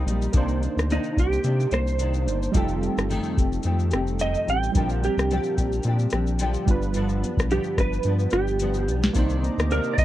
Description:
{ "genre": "indie pop, bedroom pop", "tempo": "109 BPM", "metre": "4/4", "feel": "swing 55% on 16ths", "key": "C dorian", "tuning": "A4 = 440 Hz", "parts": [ { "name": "nylon-string guitar", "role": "accompaniment", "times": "0.0-10.0 s", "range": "F2 to G4", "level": "-29 LUFS", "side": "left 4 dB", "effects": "ensemble chorus, vibrato effect" }, { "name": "warm analog keys", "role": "accompaniment", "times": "0.0-10.0 s", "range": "G3 to C5", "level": "-30 LUFS", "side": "right 6 dB", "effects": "chorus, cassette tape" }, { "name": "warm analog pad", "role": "sustained chords", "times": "0.0-0.3, 9.2-10.0 s", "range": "C5 to Eb6", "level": "-39 LUFS", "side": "equal", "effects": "chorus, tremolo" }, { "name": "round analog bass", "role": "bass", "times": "0.0-10.0 s", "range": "F1 to C3", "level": "-25 LUFS", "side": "equal", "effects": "none" }, { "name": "soft vintage rhythm box", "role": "drums", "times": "0.1-10.0 s", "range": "hi-hat, kick drum, rim click, shaker, snare drum", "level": "-25 LUFS", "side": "left 1 dB", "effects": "overdrive" }, { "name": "clean lap steel guitar", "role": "melody", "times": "0.9-10.0 s", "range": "Eb4 to G5", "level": "-26 LUFS", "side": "right 3 dB", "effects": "ensemble chorus, tape echo" } ], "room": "little or no reverb", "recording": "dry, close 1970s-style studio recording", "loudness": "-21 LUFS", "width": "side -14 dB against mid", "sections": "0.3-10.0 A section", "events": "electric slide guitar solo 0.3-10.0; drum fill 8.6-9.2", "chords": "0.3 Cm9; 2.5 F9; 4.8 Bb69; 6.7 G7; 9.2 Cm9" }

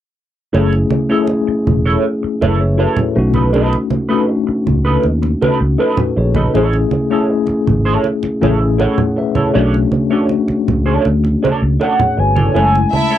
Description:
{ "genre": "lush 1970s-style soul", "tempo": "80 BPM", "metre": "4/4", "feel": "straight", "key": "F# minor", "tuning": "A4 = 442 Hz", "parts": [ { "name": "mellow tine electric piano", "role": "accompaniment", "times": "0.5-13.2 s", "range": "G#3 to F#5", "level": "-16 LUFS", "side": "left 4 dB", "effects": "medium stereo tremolo" }, { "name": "electric guitar through a small old amp", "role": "riff", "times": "0.5-13.2 s", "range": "D4 to C#5", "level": "-18 LUFS", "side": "right 4 dB", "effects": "wah, tube saturation" }, { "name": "fingered electric bass", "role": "bass", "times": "0.5-12.8 s", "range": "E1 to D#2", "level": "-16 LUFS", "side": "equal", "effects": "none" }, { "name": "congas", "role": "percussion", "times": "0.5-13.1 s", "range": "none", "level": "-20 LUFS", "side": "right 4 dB", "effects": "none" }, { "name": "hollow square lead", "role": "melody", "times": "11.8-13.2 s", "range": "F#5 to A5", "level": "-15 LUFS", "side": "equal", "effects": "chorus" }, { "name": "clear studio violin section", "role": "second line", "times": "12.9-13.2 s", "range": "E4 to E5", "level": "-17 LUFS", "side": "equal", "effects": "none" } ], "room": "light reverb", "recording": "dry, close 1970s-style studio recording", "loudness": "-12 LUFS", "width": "side -11 dB against mid", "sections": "0.5-12.6 A section", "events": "none", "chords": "0.5 F#m7; 3.2 B7; 6.5 Amaj13; 9.6 Bm9; 12.6 F#m7" }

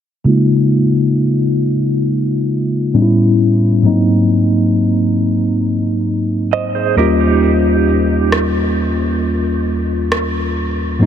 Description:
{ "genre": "contemporary R&B", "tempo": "67 BPM", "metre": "4/4", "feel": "straight", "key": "Db major", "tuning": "A4 = 442 Hz", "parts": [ { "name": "mellow tine electric piano", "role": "accompaniment", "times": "0.2-11.1 s", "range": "Eb2 to F4", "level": "-13 LUFS", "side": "left 1 dB", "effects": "slow stereo tremolo, low-pass filter" }, { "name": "direct-recorded clean electric guitar", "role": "arpeggios", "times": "6.5-8.5 s", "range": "Eb4 to Eb5", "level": "-20 LUFS", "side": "right 6 dB", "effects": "tremolo, low-pass filter, diffuse ambient delay" }, { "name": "electronic rim click", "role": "drums", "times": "8.3-10.3 s", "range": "none", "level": "-22 LUFS", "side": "right 1 dB", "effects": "none" } ], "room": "moderate huge ambient reverb, RT60 9.2 s", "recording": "none", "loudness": "-12 LUFS", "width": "side -9 dB against mid", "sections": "0.3-11.1 A section", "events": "filter sweep 0.3-11.1", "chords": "0.3 Db6; 2.9 A9; 3.8 Ab7; 7.0 Eb7" }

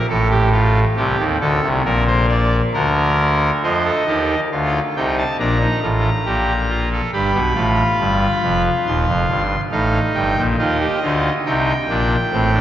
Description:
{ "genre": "classical, baroque-style 3-part fugue for pipe organ", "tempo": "69 BPM", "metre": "4/4", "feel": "straight", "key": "Eb major", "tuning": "A4 = 440 Hz", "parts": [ { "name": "pipe organ, trumpet", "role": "solo", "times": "0.0-12.6 s", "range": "Eb1 to C6", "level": "-15 LUFS", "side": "equal", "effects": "none" } ], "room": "wet church reverb, RT60 3.3 s", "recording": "worn, warbling old tape, cassette tape, warbly pitch drift, nothing above 7.5 kHz", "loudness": "-15 LUFS", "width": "side -11 dB against mid", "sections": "0.0-3.6 A section; 3.6-12.6 B section", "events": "none", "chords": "0.1 F7/A; 1.8 Bb; 3.6 F7; 5.4 Bb5; 7.1 G7; 8.9 Cm/Eb; 10.6 Eb" }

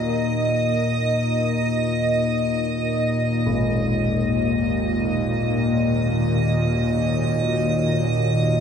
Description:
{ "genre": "dark ambient drone", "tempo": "free time", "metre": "none", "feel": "none", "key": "Eb minor", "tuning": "A4 = 440 Hz", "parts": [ { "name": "dark analog pad", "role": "sustained chords", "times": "0.0-8.6 s", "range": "Eb3 to Eb5", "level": "-29 LUFS", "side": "equal", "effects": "chorus" }, { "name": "carillon bells", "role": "arpeggios", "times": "0.0-8.6 s", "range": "Ab2 to Eb4", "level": "-30 LUFS", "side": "equal", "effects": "tape echo" }, { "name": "bowed-like drone", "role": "drone", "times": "0.0-8.6 s", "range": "Eb2 to Bb2", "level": "-22 LUFS", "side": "left 1 dB", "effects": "built-in reverb" }, { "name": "icy glass pad", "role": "texture", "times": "0.0-8.6 s", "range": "Eb5", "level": "-25 LUFS", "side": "right 2 dB", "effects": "chorus, built-in reverb, shimmer reverb" } ], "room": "wet cathedral reverb, RT60 6.9 s", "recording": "dreamy mix soaked in reverb", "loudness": "-19 LUFS", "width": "side -7 dB against mid", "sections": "0.0-8.6 A section", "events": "filter sweep on synth drone 0.0-8.6", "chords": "0.0 Ebm; 5.5 Gb" }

